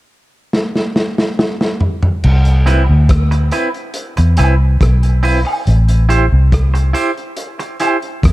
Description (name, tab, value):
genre	dub reggae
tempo	70 BPM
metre	4/4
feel	straight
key	unclear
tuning	A4 = 445 Hz
part	crunchy breakbeat drum kit	drums	0.5-8.3 s	crash cymbal, hi-hat, kick drum, rim click, snare drum, toms	-17 LUFS	equal	none
part	vintage muted fingered electric bass	bass	2.2-8.3 s	A1 to E2	-10 LUFS	equal	none
part	semi-hollow electric guitar	accompaniment	2.7-8.0 s	C4 to C5	-19 LUFS	right 2 dB	tremolo, dub echo
part	tambourine and woodblock	percussion	2.7-8.0 s	none	-25 LUFS	right 1 dB	dub echo
room	studio reverb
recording	dark, warm production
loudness	-11 LUFS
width	side -17 dB against mid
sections	0.0-2.2 A section; 2.2-8.3 B section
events	drum fill 0.5-2.2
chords	0.0 N.C.; 2.2 Cmaj7; 5.7 Am7